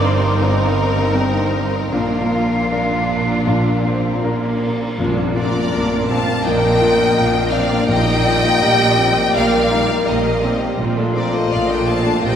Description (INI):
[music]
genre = cinematic, emotional film score for orchestra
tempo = 76-85 BPM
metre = 4/4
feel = rubato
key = Bb major from 5.0 s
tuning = A4 = 440 Hz
[part]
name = warm symphonic violin section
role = melody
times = 0.0-12.4 s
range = Bb4 to A5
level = -22 LUFS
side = left 2 dB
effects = none
[part]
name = hollow concert flute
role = second line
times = 0.0-4.6 s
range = F5 to C6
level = -26 LUFS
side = equal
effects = none
[part]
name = warm symphonic violin section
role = second line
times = 0.0-12.4 s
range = F4 to F5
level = -25 LUFS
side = left 1 dB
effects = none
[part]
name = felt-muted upright piano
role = accompaniment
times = 0.0-12.4 s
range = G1 to D5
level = -22 LUFS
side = left 1 dB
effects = none
[part]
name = rich symphonic viola section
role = accompaniment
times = 0.0-12.4 s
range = G3 to A4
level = -26 LUFS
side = equal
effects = none
[part]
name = warm French horn section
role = sustained chords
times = 0.0-12.4 s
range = Bb3 to Bb4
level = -22 LUFS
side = left 1 dB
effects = none
[part]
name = clear symphonic double bass section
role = bass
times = 0.0-12.4 s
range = G1 to Bb1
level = -24 LUFS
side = right 3 dB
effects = none
[part]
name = rich symphonic cello section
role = bass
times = 0.0-12.4 s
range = G2 to Bb2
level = -23 LUFS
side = right 2 dB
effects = none
[part]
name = cymbal swell and tam-tam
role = percussion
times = 1.9-7.8 s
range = none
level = -30 LUFS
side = left 2 dB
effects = none
[part]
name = timpani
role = percussion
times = 5.0-8.9 s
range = Bb2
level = -28 LUFS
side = left 1 dB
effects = none
[sound]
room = wet cathedral reverb, RT60 4.3 s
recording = none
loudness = -14 LUFS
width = side -8 dB against mid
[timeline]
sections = 0.0-5.0 A section; 5.0-12.4 B section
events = band accent 5.0-5.7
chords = 0.0 Eb6/G; 1.9 Bb; 7.9 Eb/Bb; 10.8 Dm7/Bb